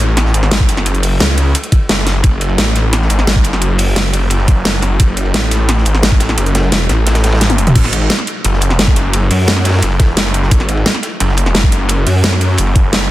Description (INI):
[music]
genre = dark technical drum and bass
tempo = 174 BPM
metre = 4/4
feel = straight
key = F# minor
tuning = A4 = 440 Hz
[part]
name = snarling distorted saw bass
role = bass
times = 0.0-13.1 s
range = F#1 to F#2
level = -13 LUFS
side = equal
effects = distortion, overdrive, sidechain pumping
[part]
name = dubstep drum kit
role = drums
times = 0.0-13.0 s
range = crash cymbal, hi-hat, snare drum, toms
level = -16 LUFS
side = equal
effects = studio ambience
[part]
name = crunchy breakbeat drum kit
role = drums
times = 0.2-13.1 s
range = hi-hat, ride cymbal, snare drum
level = -23 LUFS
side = equal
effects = high-pass filter on cymbals, studio ambience, high-pass filter on hats, high-pass filter on snare, high-pass filter on room
[part]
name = electronic kick drum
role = drums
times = 0.6-12.8 s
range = none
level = -11 LUFS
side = equal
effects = studio ambience
[sound]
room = studio reverb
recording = dense, heavily limited modern master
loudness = -10 LUFS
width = side -15 dB against mid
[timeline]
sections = 0.0-7.8 A section; 7.8-13.1 A section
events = drop 0.0-7.8, 7.8-13.1; kick drops out 7.1-7.8; drum fill 7.4-7.8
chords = none